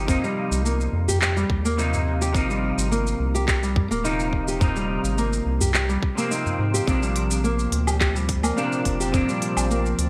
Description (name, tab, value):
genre	organic downtempo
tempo	106 BPM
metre	4/4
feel	straight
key	unclear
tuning	A4 = 440 Hz
part	semi-hollow electric guitar	accompaniment	0.0-10.1 s	C3 to Eb4	-31 LUFS	equal	ensemble chorus, sidechain pumping, digital delay
part	nylon-string guitar	arpeggios	0.0-10.1 s	G3 to G4	-29 LUFS	equal	digital delay
part	round analog bass	bass	0.0-10.1 s	Eb1 to Ab2	-27 LUFS	equal	tube saturation
part	electronic kick drum	drums	0.1-9.3 s	none	-26 LUFS	equal	none
part	organic electronic drum kit	drums	0.1-10.1 s	handclaps, hi-hat, shaker, woodblock	-31 LUFS	equal	gated reverb
part	udu	percussion	0.1-9.3 s	none	-31 LUFS	equal	none
part	warm analog pad	sustained chords	6.9-10.1 s	Bb2 to D5	-32 LUFS	equal	chorus, sidechain pumping
room	moderate lush hall reverb, RT60 1.8 s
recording	bright 1980s-style digital production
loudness	-23 LUFS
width	mono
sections	0.0-10.1 A section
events	none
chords	0.0 Cm; 2.3 Abadd9; 6.9 Bb